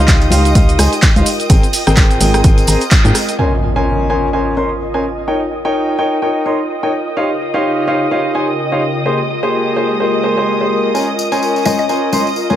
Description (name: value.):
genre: piano house.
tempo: 127 BPM.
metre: 4/4.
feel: swing 58% on 16ths.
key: Ab major.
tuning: A4 = 440 Hz.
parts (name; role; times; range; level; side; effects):
warm studio violin section; sustained chords; 0.0-12.6 s; Eb5 to Eb6; -24 LUFS; right 1 dB; sidechain pumping, low-pass filter.
warm concert grand piano; riff; 0.0-12.6 s; Bb3 to C6; -16 LUFS; left 1 dB; sidechain pumping, digital delay.
organ-like FM bass; bass; 0.0-3.1 s; Ab1 to Ab2; -14 LUFS; equal; sidechain pumping.
ethereal airy pad; texture; 0.0-12.6 s; Db3 to G5; -22 LUFS; right 1 dB; ensemble chorus, built-in reverb, sidechain pumping.
electronic kick drum; drums; 0.1-3.0 s; none; -10 LUFS; equal; none.
punchy analog drum machine; drums; 0.1-3.4 s; handclaps, hi-hat, rim click, shaker; -17 LUFS; right 1 dB; none.
tambourine and congas; percussion; 0.1-3.4, 10.9-12.6 s; none; -22 LUFS; left 3 dB; none.
impact; sound effects; 3.4-5.3 s; none; -20 LUFS; equal; none.
mallet-like synth pluck; melody; 11.7-11.9 s; Eb5; -23 LUFS; left 4 dB; chorus, phaser, cassette tape, digital delay.
room: light reverb, digital ambience.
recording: none.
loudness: -12 LUFS.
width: side -11 dB against mid.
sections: 0.0-3.4 A section; 3.4-12.6 B section.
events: band accent 2.9; impact 3.4-5.3; filter sweep on violin section 3.4-12.6.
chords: 0.0 Dbmaj9#11; 1.5 Abmaj9; 3.4 Bbm9; 5.3 Eb7; 7.2 Dbmaj9#11; 9.1 Abmaj9; 10.9 Bbm9.